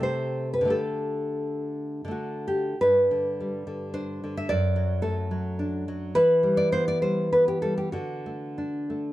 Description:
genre	romantic piece for solo classical guitar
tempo	83-113 BPM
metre	3/4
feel	rubato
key	G major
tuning	A4 = 438 Hz
part	nylon-string guitar	solo	0.0-9.1 s	F#2 to E5	-24 LUFS	equal	none
room	light reverb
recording	dark, warm production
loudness	-24 LUFS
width	side -15 dB against mid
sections	0.0-2.8 A section; 2.8-9.1 B section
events	none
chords	0.0 Am7/C; 0.7 Dsus4; 2.1 D; 2.8 G; 4.5 D/F#; 6.2 Em; 7.9 D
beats	0.04 | 0.72 1.44 2.13 | 2.80 3.38 3.95 | 4.51 5.05 5.61 | 6.17 6.73 7.32 | 7.92 8.56

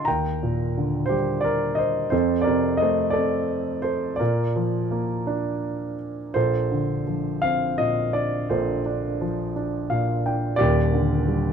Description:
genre	classical, lyrical solo piano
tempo	57 BPM (dotted quarters)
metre	6/8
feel	rubato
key	Bb major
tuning	A4 = 440 Hz
part	warm grand piano	solo	0.0-11.5 s	Eb1 to Bb5	-21 LUFS	equal	none
room	light reverb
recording	dark, warm production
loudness	-21 LUFS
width	side -7 dB against mid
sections	0.0-6.4 A section; 6.4-11.5 B section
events	grand piano fill 9.6-10.6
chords	0.1 Ebmaj7; 2.1 F; 4.2 Bb; 6.4 Bbmaj9; 10.6 Ebmaj7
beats	| 0.07 1.10 | 2.12 3.16 | 4.20 5.28 | 6.36 7.43 | 8.50 9.55 | 10.59

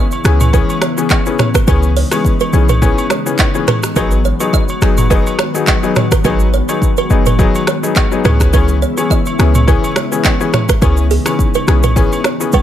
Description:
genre	afrobeats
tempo	105 BPM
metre	4/4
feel	swing 55% on 16ths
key	unclear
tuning	A4 = 439 Hz
part	clear grand piano	accompaniment	0.0-12.6 s	E3 to G#4	-18 LUFS	left 6 dB	none
part	glassy FM pad	sustained chords	0.0-12.6 s	C#3 to F#4	-21 LUFS	left 2 dB	ensemble chorus, built-in reverb, sidechain pumping
part	kalimba	riff	0.0-12.6 s	G#4 to D#5	-21 LUFS	right 8 dB	digital delay
part	afro-pop drum kit	drums	0.1-12.6 s	finger snaps, handclaps, hi-hat, kick drum, rim click, shaker, toms	-15 LUFS	equal	none
part	agogo bells and woodblock	percussion	0.1-12.6 s	none	-24 LUFS	right 2 dB	none
part	clean 808-style bass	bass	0.2-12.0 s	F#1 to C#2	-13 LUFS	equal	none
room	digital ambience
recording	none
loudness	-10 LUFS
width	side -11 dB against mid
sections	0.0-12.6 A section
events	none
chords	0.0 C#m7; 4.0 G#m7; 8.2 C#m7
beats	0.53 1.10 | 1.68 2.25 2.82 3.39 | 3.96 4.53 5.10 5.68 | 6.25 6.82 7.39 7.96 | 8.53 9.10 9.68 10.25 | 10.82 11.39 11.96 12.53

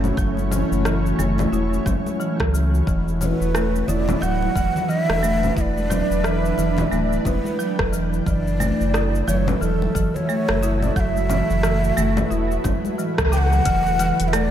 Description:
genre	organic downtempo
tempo	89 BPM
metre	4/4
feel	swing 60% on 16ths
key	E dorian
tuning	A4 = 439 Hz
part	granular cloud pad	sustained chords	0.0-14.5 s	A3 to G5	-27 LUFS	equal	built-in reverb, sidechain pumping
part	folk marimba with medium hard mallets	arpeggios	0.0-14.5 s	C#3 to E4	-24 LUFS	right 1 dB	analog delay
part	warm sub bass	bass	0.0-14.5 s	D1 to C#2	-23 LUFS	equal	none
part	deep house drum kit	drums	0.0-14.5 s	cabasa, congas, hi-hat, rim click	-28 LUFS	left 1 dB	overdrive
part	electronic kick drum	drums	0.2-13.8 s	none	-25 LUFS	equal	none
part	congas	percussion	0.4-14.2 s	none	-32 LUFS	left 2 dB	none
part	breathy mellow ney	melody	3.2-14.5 s	A4 to G5	-25 LUFS	right 1 dB	tape echo
room	moderate plate reverb, RT60 2.5 s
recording	dreamy mix soaked in reverb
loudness	-18 LUFS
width	side -10 dB against mid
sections	0.0-13.7 A section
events	band accent 13.2-13.5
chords	0.0 F#m7; 2.9 Em9; 8.3 F#m7; 13.7 Esus2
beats	| 0.18 0.85 1.52 2.20 | 2.87 3.55 4.22 4.89 | 5.57 6.24 6.92 7.59 | 8.27 8.94 9.62 10.29 | 10.96 11.64 12.31 12.98 | 13.66 14.33

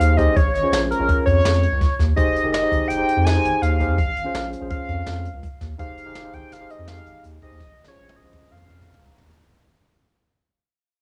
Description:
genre	progressive instrumental, band music in an uneven meter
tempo	166 BPM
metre	5/4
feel	straight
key	unclear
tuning	A4 = 440 Hz
part	lead with added fifth	melody	0.0-9.2 s	Bb4 to Ab5	-25 LUFS	equal	chorus, analog delay
part	tine electric piano	accompaniment	0.0-9.4 s	Db4 to Bb5	-28 LUFS	equal	none
part	round analog bass	bass	0.0-9.4 s	F1 to F2	-25 LUFS	equal	none
part	jazz brush drum kit	drums	0.0-9.4 s	hi-hat, kick drum, snare drum, toms	-26 LUFS	equal	cassette tape
room	little or no reverb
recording	home recording on cassette, small room ambience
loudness	-20 LUFS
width	mono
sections	0.0-9.4 A section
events	fade-out 0.0-9.4; drum fill 7.6-9.4; tine electric piano fill 8.9-9.4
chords	0.4 Bbm7; 2.2 Fm9; 4.0 Bbm7; 5.8 Fm9; 7.6 Bbm7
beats	0.00 | 0.36 0.72 1.09 1.45 1.81 | 2.17 2.53 2.90 3.26 3.62 | 3.98 4.34 4.70 5.07 5.43 | 5.79 6.15 6.51 6.88 7.24 | 7.60 7.96 8.33 8.69 9.05

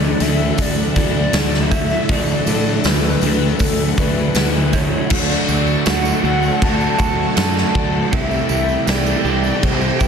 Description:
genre	rock, shoegaze and dream pop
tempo	80 BPM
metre	4/4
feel	straight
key	D major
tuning	A4 = 440 Hz
part	pure sine lead	melody	0.0-10.1 s	A4 to A5	-24 LUFS	left 1 dB	chorus, slapback echo
part	string machine, full ensemble	sustained chords	0.0-10.1 s	G4 to C#6	-28 LUFS	equal	phaser, ensemble chorus
part	picked plugged-in twelve-string acoustic guitar	arpeggios	0.0-5.1 s	E3 to F#4	-28 LUFS	left 1 dB	none
part	crunchy overdriven guitar	riff	0.0-10.1 s	C3 to E4	-23 LUFS	left 14 dB	lush chorus
part	direct-recorded clean electric guitar	riff	0.0-10.1 s	C3 to G4	-22 LUFS	right 12 dB	reverse reverb
part	fuzz picked electric bass	bass	0.0-10.1 s	C2 to A2	-21 LUFS	equal	overdrive
part	huge arena drum kit	drums	0.2-10.1 s	crash cymbal, hi-hat, kick drum, snare drum	-20 LUFS	equal	none
part	tambourine	percussion	0.2-10.1 s	none	-34 LUFS	right 11 dB	none
room	small room ambience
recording	dense, heavily limited modern master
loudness	-14 LUFS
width	side -6 dB against mid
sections	0.0-5.1 A section; 5.1-10.1 B section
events	none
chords	0.0 Dadd9; 5.1 Dmaj7; 8.1 C6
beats	0.58 1.34 | 2.09 2.85 3.60 4.35 | 5.11 5.86 6.61 7.37 | 8.12 8.87 9.63

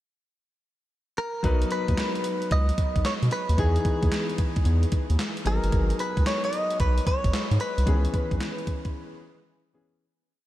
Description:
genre	R&B, new jack swing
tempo	112 BPM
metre	4/4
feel	swing 66% on 16ths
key	B major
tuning	A4 = 440 Hz
part	direct-recorded clean electric guitar	melody	1.2-9.7 s	G#4 to D#5	-30 LUFS	equal	lush chorus, tape echo
part	clear concert grand piano	accompaniment	1.4-10.0 s	D#3 to B4	-31 LUFS	left 3 dB	none
part	round analog bass	bass	1.4-8.4 s	G1 to B2	-23 LUFS	equal	none
part	gated 80s digital drum machine	drums	1.4-8.9 s	handclaps, hi-hat, kick drum, snare drum	-27 LUFS	equal	gated reverb, gated reverb snare
room	light reverb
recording	none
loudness	-22 LUFS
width	side -14 dB against mid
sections	0.0-1.4 pickup bar; 1.4-10.0 verse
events	fade-out 7.9-10.0; break 8.9-10.0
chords	0.0 N.C.; 1.4 B; 3.6 Emaj7; 5.5 G#m7; 7.9 C#m7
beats	0.37 0.90 | 1.44 1.98 2.51 3.05 | 3.58 4.12 4.65 5.19 | 5.73 6.26 6.80 7.33 | 7.87 8.40 8.94 9.48

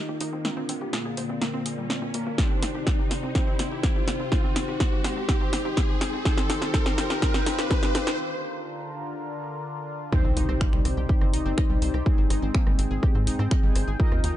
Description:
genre	melodic techno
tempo	124 BPM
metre	4/4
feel	straight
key	C minor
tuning	A4 = 439 Hz
part	soft octave-layered synth lead	melody	0.0-14.4 s	Bb3 to F4	-33 LUFS	left 4 dB	chorus, tremolo, ping-pong delay
part	sweeping resonant pad	sustained chords	0.0-14.4 s	C3 to G5	-37 LUFS	left 1 dB	chorus, phaser, vintage 12-bit sampler grit, sidechain pumping
part	analog synth brass	stabs	0.0-14.4 s	Ab3 to Eb5	-34 LUFS	right 1 dB	chorus, sidechain pumping, ping-pong delay
part	riser and impact	sound effects	0.0-12.1 s	none	-33 LUFS	equal	none
part	analog pluck	arpeggios	0.1-14.4 s	G3 to Eb5	-36 LUFS	equal	chorus, cassette tape, sidechain pumping, ping-pong delay
part	tight sequencer bass	bass	0.1-14.3 s	D1 to Ab2	-30 LUFS	equal	sidechain pumping, high-pass filter
part	punchy analog drum machine	drums	0.2-14.3 s	finger snaps, hi-hat, rim click, snare drum	-30 LUFS	equal	none
part	electronic kick drum	drums	2.4-14.1 s	none	-24 LUFS	equal	none
room	little or no reverb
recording	nothing above 10.4 kHz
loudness	-23 LUFS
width	side -12 dB against mid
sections	0.0-10.1 A section; 10.1-14.4 B section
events	build-up 0.0-10.1; drum fill 0.0-8.2; filter sweep on synth pluck 0.0-10.1; filter sweep on soft synth lead 0.0-10.1; filter sweep on analog polysynth 0.0-10.1; filter sweep on analog synth pad 0.0-10.1; riser 0.0-8.2; break 8.2-10.1; drop 10.1-14.4; impact 10.1-12.1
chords	0.4 Bb/D; 2.4 Cmadd9; 4.3 Abmaj7; 6.3 Ebadd9; 8.2 Bb/D; 10.1 Cmadd9; 12.1 Abmaj7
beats	| 0.45 0.93 1.42 1.90 | 2.38 2.87 3.35 3.83 | 4.32 4.80 5.29 5.77 | 6.25 6.74 7.22 7.71 | 8.19 8.67 9.16 9.64 | 10.12 10.61 11.09 11.58 | 12.06 12.54 13.03 13.51 | 14.00

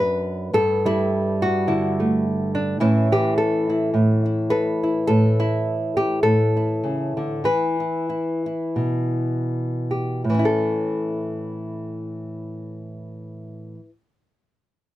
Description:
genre	folk, solo fingerstyle acoustic guitar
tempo	75-106 BPM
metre	4/4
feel	swing 55% on 8ths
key	A mixolydian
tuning	A4 = 440 Hz
part	nylon-string guitar	solo	0.0-13.9 s	F#2 to B4	-20 LUFS	equal	none
room	moderate booth ambience, RT60 0.2 s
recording	none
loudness	-19 LUFS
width	side -14 dB against mid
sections	0.0-5.1 A section; 5.1-10.2 B section; 10.2-13.5 C section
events	slowing down 5.1-10.2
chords	0.0 Bm; 0.5 Gsus2; 2.8 A; 7.4 E5; 10.2 A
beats	| 0.54 1.10 1.67 2.24 | 2.81 3.37 3.94 4.51 | 5.08 5.65 6.23 6.82 | 7.44 8.08 8.76 9.48 | 10.25 11.05 11.85 12.66

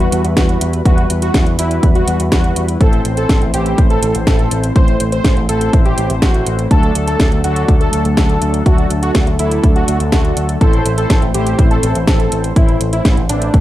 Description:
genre	italo disco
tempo	123 BPM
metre	4/4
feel	straight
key	A dorian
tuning	A4 = 440 Hz
part	wide unison lead	melody	0.0-13.6 s	D4 to C5	-20 LUFS	equal	tape echo
part	mellow synth brass	stabs	0.0-13.6 s	A2 to C5	-20 LUFS	left 1 dB	chorus
part	picked electric bass with an envelope filter	bass	0.0-13.6 s	A1 to E2	-18 LUFS	equal	none
part	house drum kit	drums	0.0-13.6 s	hi-hat, snare drum	-20 LUFS	equal	none
part	electronic kick drum	drums	0.4-13.6 s	none	-13 LUFS	equal	none
room	digital ambience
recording	dry, gritty hardware recording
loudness	-11 LUFS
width	side -14 dB against mid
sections	0.0-13.6 A section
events	none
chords	0.0 Emadd9; 2.8 Am; 6.7 D; 10.6 Am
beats	0.37 | 0.86 1.34 1.83 2.32 | 2.81 3.29 3.78 4.27 | 4.76 5.25 5.73 6.22 | 6.71 7.20 7.68 8.17 | 8.66 9.15 9.64 10.12 | 10.61 11.10 11.59 12.07 | 12.56 13.05 13.54

